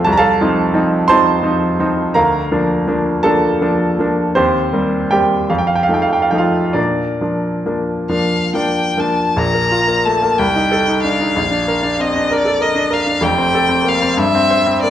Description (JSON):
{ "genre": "classical, romantic duo for violin and grand piano", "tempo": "44-67 BPM (dotted quarters)", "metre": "6/8", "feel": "rubato", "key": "Bb major", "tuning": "A4 = 441 Hz", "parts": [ { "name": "bright grand piano", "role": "accompaniment", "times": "0.0-14.9 s", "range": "F1 to C6", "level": "-14 LUFS", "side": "equal", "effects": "none" }, { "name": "rich violin", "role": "melody", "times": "8.1-14.9 s", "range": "D5 to Bb5", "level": "-16 LUFS", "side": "left 2 dB", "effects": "none" } ], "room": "wet recital hall reverb, RT60 1.5 s", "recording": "dark, warm production", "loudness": "-13 LUFS", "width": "side -11 dB against mid", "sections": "0.0-9.4 A section; 9.4-14.9 B section", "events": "none", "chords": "0.1 F7/C; 2.2 Bb/D; 4.4 Cm7/Eb; 5.5 F7; 6.8 Bb; 9.4 Bb5; 10.4 Cm69; 11.4 Bb; 13.2 F; 14.2 C/G", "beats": "| 0.08 1.10 | 2.16 3.23 | 4.35 5.49 | 6.77 8.11 | 9.38 10.39 | 11.37 12.33 | 13.24 14.19" }